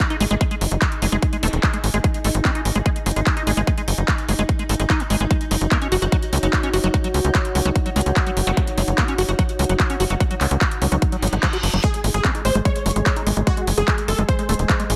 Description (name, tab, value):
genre	psychedelic trance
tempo	147 BPM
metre	4/4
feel	straight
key	unclear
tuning	A4 = 441 Hz
part	pulsing gated texture	sustained chords	0.0-15.0 s	G#3 to G#4	-33 LUFS	equal	chorus, built-in reverb, sidechain pumping
part	big-room dance drum kit	drums	0.0-15.0 s	handclaps, hi-hat	-28 LUFS	equal	overdrive
part	electronic kick drum	drums	0.0-14.8 s	none	-22 LUFS	equal	overdrive
part	warbly tape-like pad	texture	0.2-15.0 s	F#4 to G#5	-34 LUFS	equal	chorus, built-in reverb, sidechain pumping
part	liquid acid bass	riff	0.1-14.8 s	E#3 to F#4	-28 LUFS	equal	chorus, sidechain pumping, digital delay
part	tight sequencer bass	bass	0.2-15.0 s	D#1 to C#2	-23 LUFS	equal	none
part	zap and reverse cymbal	sound effects	1.4-1.5, 8.5-8.6, 11.2-11.8 s	none	-32 LUFS	equal	none
part	supersaw stab	melody	11.8-15.0 s	F#4 to C#5	-28 LUFS	equal	phaser, sidechain pumping, digital delay
room	light reverb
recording	none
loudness	-20 LUFS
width	mono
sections	0.0-15.0 A section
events	reverse cymbal 11.2-11.8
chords	0.0 G#5; 5.3 F#5; 11.8 G#5